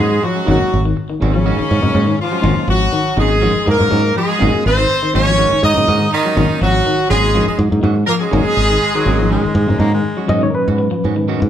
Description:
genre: afrobeat.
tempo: 122 BPM.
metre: 4/4.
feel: swing 53% on 16ths.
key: unclear.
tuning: A4 = 440 Hz.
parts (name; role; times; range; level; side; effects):
bright horn section; melody; 0.0-9.8 s; Db4 to Eb5; -17 LUFS; equal; none.
raspy tenor saxophone; second line; 0.0-9.8 s; Db3 to Eb4; -22 LUFS; right 4 dB; none.
barky reed electric piano; accompaniment; 0.0-11.5 s; Bb2 to Eb5; -23 LUFS; left 2 dB; overdrive, fast tremolo.
electric guitar at the edge of break-up; arpeggios; 0.0-11.5 s; Db3 to Gb3; -22 LUFS; left 4 dB; none.
clean electric guitar; stabs; 0.0-11.5 s; Eb3 to Gb4; -24 LUFS; right 4 dB; none.
fingered electric bass; bass; 0.0-11.5 s; Ab1 to Ab2; -17 LUFS; equal; none.
raspy baritone saxophone; second line; 8.8-10.3 s; Gb3 to Bb3; -22 LUFS; left 3 dB; none.
room: moderate large studio reverb, RT60 1.2 s.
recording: band playing live in one room.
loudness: -12 LUFS.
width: side -10 dB against mid.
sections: 0.0-10.3 A section; 10.3-11.5 B section.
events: reed electric piano solo 10.3-11.5.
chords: 0.0 Ab7sus4.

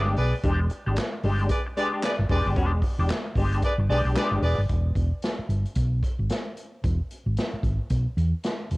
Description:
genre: funk.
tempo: 112 BPM.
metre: 4/4.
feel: swing 60% on 16ths.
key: unclear.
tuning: A4 = 440 Hz.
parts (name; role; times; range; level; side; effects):
electric guitar at the edge of break-up; accompaniment; 0.0-4.6 s; G#3 to G4; -29 LUFS; left 2 dB; wah, cassette tape.
hollow-body short-scale fingered electric bass; bass; 0.0-8.8 s; E1 to E2; -24 LUFS; equal; none.
clear horn section; second line; 0.2-4.6 s; G#4 to D5; -30 LUFS; equal; cassette tape.
swinging big-band drum kit; drums; 0.2-8.8 s; handclaps, hi-hat, kick drum, snare drum; -29 LUFS; equal; cassette tape.
room: light reverb, studio reverb.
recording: home recording on cassette.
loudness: -23 LUFS.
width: side -22 dB against mid.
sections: 0.0-4.7 A section; 4.7-8.8 B section.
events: none.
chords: 0.0 E7#9; 4.7 E.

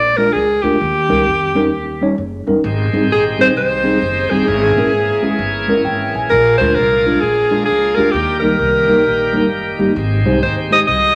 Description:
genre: uptempo gospel.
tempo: 131 BPM.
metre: 4/4.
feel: swing 63% on 8ths.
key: Ab major.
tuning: A4 = 440 Hz.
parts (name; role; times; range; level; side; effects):
clear alto saxophone; melody; 0.0-11.2 s; G4 to Eb5; -17 LUFS; equal; none.
upright bass; bass; 0.0-11.2 s; Gb1 to F2; -25 LUFS; equal; none.
mellow tine electric piano; accompaniment; 0.2-11.2 s; Ab2 to Ab5; -20 LUFS; equal; none.
bright tonewheel organ; sustained chords; 2.6-11.2 s; Eb3 to Ab4; -24 LUFS; equal; slow rotary speaker, overdrive.
room: wet large studio reverb, RT60 1.4 s.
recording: none.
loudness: -15 LUFS.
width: mono.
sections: 0.0-11.2 A section.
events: none.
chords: 0.0 Bb7; 0.8 Eb7; 2.6 Abmaj7; 4.5 Dbm6/Ab; 6.3 Bb7; 8.1 Eb; 10.0 Abmaj7.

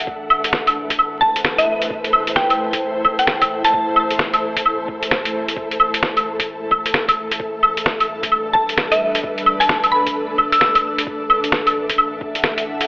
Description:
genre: future garage.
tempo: 131 BPM.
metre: 4/4.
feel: swing 62% on 16ths.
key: A dorian.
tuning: A4 = 440 Hz.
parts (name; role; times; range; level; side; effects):
ethereal airy pad; sustained chords; 0.0-12.9 s; G3 to F#5; -24 LUFS; equal; ensemble chorus, built-in reverb, tremolo, sidechain pumping.
warm sub bass; bass; 0.0-12.9 s; A1; -44 LUFS; equal; sidechain pumping.
wind-like tuned noise texture; texture; 0.0-12.9 s; A3 to A4; -29 LUFS; equal; built-in reverb.
electronic kick drum; drums; 0.1-12.3 s; none; -33 LUFS; equal; small room ambience.
lo-fi sampler-style drum kit; drums; 0.3-12.9 s; claves, hi-hat, snare drum; -16 LUFS; equal; small room ambience.
mallet-like synth pluck; melody; 1.2-4.0, 8.5-11.1 s; E5 to E6; -18 LUFS; equal; chorus, dub echo.
room: moderate lush hall reverb, RT60 1.8 s, digital ambience.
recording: vinyl crackle, telephone sound.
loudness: -15 LUFS.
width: side -26 dB against mid.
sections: 0.1-12.9 A section.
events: none.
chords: 0.1 Am; 7.4 G6/A; 11.1 D/A.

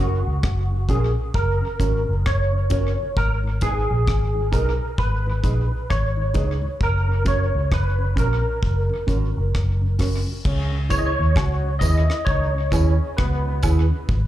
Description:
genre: roots reggae.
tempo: 66 BPM.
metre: 4/4.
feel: swing 60% on 16ths.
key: unclear.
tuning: A4 = 441 Hz.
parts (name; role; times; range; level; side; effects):
barky tine electric piano; melody; 0.0-13.9 s; F#4 to D#5; -26 LUFS; equal; ensemble chorus, dub echo, plate reverb, slapback echo.
mellow electric guitar; accompaniment; 0.0-13.9 s; C#4 to B4; -32 LUFS; right 5 dB; dub echo, plate reverb, slapback echo.
mellow tonewheel organ; accompaniment; 0.0-14.0 s; F#2 to D#4; -36 LUFS; left 2 dB; slow rotary speaker, plate reverb.
vintage muted fingered electric bass; bass; 0.0-14.3 s; F#1 to D#2; -21 LUFS; equal; none.
deep reggae drum kit; drums; 0.4-14.3 s; crash cymbal, hi-hat, kick drum, rim click; -23 LUFS; equal; none.
warm trombone section; second line; 10.5-13.9 s; B2 to F#4; -32 LUFS; left 1 dB; dub echo, plate reverb, slapback echo.
tambourine and woodblock; percussion; 10.9-13.9 s; none; -34 LUFS; right 4 dB; slapback echo.
room: little or no reverb.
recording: live gig heard through the venue's PA, club reverb.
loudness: -19 LUFS.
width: side -13 dB against mid.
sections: 0.0-10.4 A section; 10.4-14.3 B section.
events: none.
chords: 0.0 F#; 3.2 G#m; 6.8 F#; 10.4 C#m7.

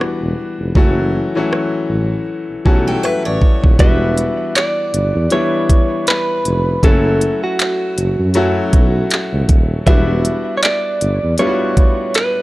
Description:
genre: contemporary R&B.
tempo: 79 BPM.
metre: 4/4.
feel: swing 58% on 16ths.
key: E dorian.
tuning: A4 = 440 Hz.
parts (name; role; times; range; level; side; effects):
bright grand piano; accompaniment; 0.0-12.4 s; E3 to A5; -19 LUFS; left 2 dB; none.
mellow tuba; bass; 0.0-11.4 s; D#1 to F#2; -18 LUFS; equal; none.
smooth R&B drum kit; drums; 0.0-12.4 s; handclaps, hi-hat, kick drum, rim click; -13 LUFS; equal; none.
picked steel-string acoustic guitar; arpeggios; 2.9-3.8 s; A4 to C#5; -24 LUFS; left 2 dB; none.
direct-recorded clean electric guitar; melody; 3.8-12.4 s; F#4 to E5; -19 LUFS; right 1 dB; none.
room: small room ambience.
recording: dry, gritty hardware recording, cassette tape.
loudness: -13 LUFS.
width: side -18 dB against mid.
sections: 0.0-3.8 A section; 3.8-12.4 B section.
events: grand piano fill 2.3-3.8.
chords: 0.0 Em7; 0.8 F#m7; 3.8 Em7; 6.8 F#m7; 9.9 Em7.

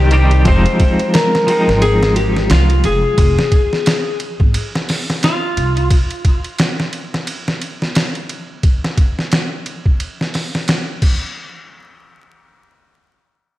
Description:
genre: trip hop.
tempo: 88 BPM.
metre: 4/4.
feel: swing 58% on 16ths.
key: F minor.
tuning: A4 = 440 Hz.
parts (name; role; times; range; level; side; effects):
electric slide guitar; melody; 0.0-5.9 s; F4 to C5; -18 LUFS; left 1 dB; tape echo.
clean electric guitar; accompaniment; 0.0-3.2 s; Eb3 to G4; -17 LUFS; equal; tremolo, tape echo.
warm symphonic string section; sustained chords; 0.0-0.5 s; Eb4; -30 LUFS; left 1 dB; none.
upright bass; bass; 0.0-5.9 s; F1 to C2; -14 LUFS; equal; none.
trip hop sampler-style drum kit; drums; 0.1-11.2 s; crash cymbal, hi-hat, kick drum, ride cymbal, snare drum; -16 LUFS; equal; small room ambience.
room: moderate plate reverb, RT60 1.9 s, digital ambience.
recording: dreamy mix soaked in reverb, vinyl crackle.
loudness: -13 LUFS.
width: side -15 dB against mid.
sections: 0.5-11.4 A section; 11.4-13.6 B section.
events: break 0.0-0.5.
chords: 0.5 Fm7; 5.9 N.C..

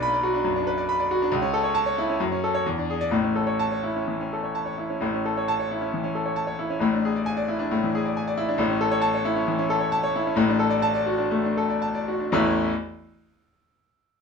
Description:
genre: classical, virtuoso piano study.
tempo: 111-139 BPM.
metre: 4/4.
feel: rubato.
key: A major.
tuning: A4 = 440 Hz.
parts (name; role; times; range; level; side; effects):
clear concert grand piano; solo; 0.0-12.7 s; A1 to B5; -22 LUFS; left 1 dB; none.
room: moderate studio reverb, RT60 0.8 s.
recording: small room ambience.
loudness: -22 LUFS.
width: side -5 dB against mid.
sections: 0.0-5.0 A section; 5.0-12.3 B section; 12.3-14.2 C section.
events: slowing down 7.7-12.3.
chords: 0.0 Bm; 1.3 A/C#; 2.2 F#m; 2.6 E7; 3.1 A; 6.8 E7/A; 8.6 A; 10.4 D/A; 12.3 A.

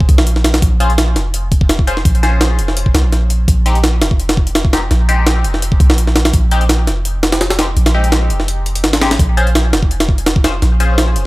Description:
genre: drum and bass, jungle.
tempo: 168 BPM.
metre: 4/4.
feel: swing 53% on 16ths.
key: Bb dorian.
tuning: A4 = 440 Hz.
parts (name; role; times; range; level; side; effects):
band-passed chord stab; stabs; 0.0-11.3 s; Ab3 to C5; -21 LUFS; left 2 dB; phaser, vintage 12-bit sampler grit, dub echo.
long sustained 808-style bass; bass; 0.0-11.3 s; F1 to C2; -14 LUFS; equal; none.
breakbeat sampler-style drum kit; drums; 0.0-11.2 s; hi-hat, kick drum, snare drum; -14 LUFS; equal; studio reverb.
room: little or no reverb.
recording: none.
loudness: -11 LUFS.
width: side -20 dB against mid.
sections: 0.0-11.3 A section.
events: kick drops out 8.5-9.2.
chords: 0.0 Bbm7; 3.5 Fm7; 9.2 Bbm7.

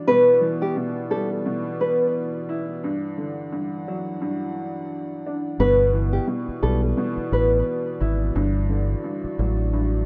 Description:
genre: hip hop.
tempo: 87 BPM.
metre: 4/4.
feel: swing 57% on 16ths.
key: unclear.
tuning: A4 = 439 Hz.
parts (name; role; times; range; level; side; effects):
dark upright piano; accompaniment; 0.0-10.1 s; G2 to E4; -30 LUFS; equal; cassette tape, high-pass filter, low-pass filter.
dark analog pad; sustained chords; 0.0-10.1 s; E3 to F#5; -34 LUFS; equal; chorus, high-pass filter, low-pass filter.
nylon-string guitar; melody; 0.1-7.5 s; G4 to B4; -23 LUFS; equal; high-pass filter, low-pass filter, delay.
deep dub fingered electric bass; bass; 5.6-10.1 s; G1 to B1; -24 LUFS; equal; none.
room: little or no reverb.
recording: rough home demo mix.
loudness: -23 LUFS.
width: mono.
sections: 0.0-10.1 A section.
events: none.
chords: 0.1 G6; 2.8 Em9; 5.6 G6; 8.4 Em9/G.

